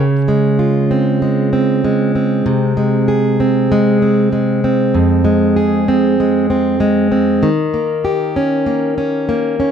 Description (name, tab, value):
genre	pop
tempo	97 BPM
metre	4/4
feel	straight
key	unclear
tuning	A4 = 440 Hz
part	fingerpicked plugged-in steel-string acoustic guitar	solo	0.0-9.7 s	F2 to Ab4	-12 LUFS	right 1 dB	none
room	light reverb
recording	dark, warm production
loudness	-12 LUFS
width	side -8 dB against mid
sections	0.0-9.7 A section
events	none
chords	0.0 Dbmaj7; 2.5 Ab/C; 4.9 Fm; 7.4 Eb7